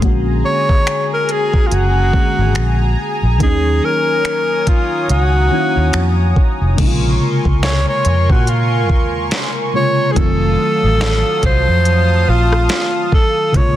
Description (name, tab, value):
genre	contemporary R&B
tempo	71 BPM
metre	4/4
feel	swing 58% on 16ths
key	unclear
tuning	A4 = 439 Hz
part	mellow FM electric piano	accompaniment	0.0-13.8 s	C3 to F5	-21 LUFS	left 1 dB	chorus, phaser
part	lush unison pad	sustained chords	0.0-13.8 s	Gb3 to Eb6	-23 LUFS	equal	chorus
part	vintage muted fingered electric bass	bass	0.0-13.8 s	F1 to Bb2	-15 LUFS	equal	none
part	smooth R&B drum kit	drums	0.0-13.8 s	crash cymbal, finger snaps, hi-hat, kick drum, rim click, snare drum	-16 LUFS	equal	soft clipping on snare
part	breathy alto saxophone	melody	0.5-13.8 s	F4 to Db5	-18 LUFS	equal	tape echo
room	little or no reverb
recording	dense, heavily limited modern master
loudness	-12 LUFS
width	side -13 dB against mid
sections	0.0-6.8 A section; 6.8-13.8 B section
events	none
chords	0.0 Bb7alt; 3.4 Ebm7; 6.8 Bbm9; 10.2 F7b9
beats	| 0.02 0.87 1.71 2.56 | 3.40 4.25 5.09 5.94 | 6.78 7.63 8.47 9.32 | 10.16 11.01 11.85 12.70 | 13.54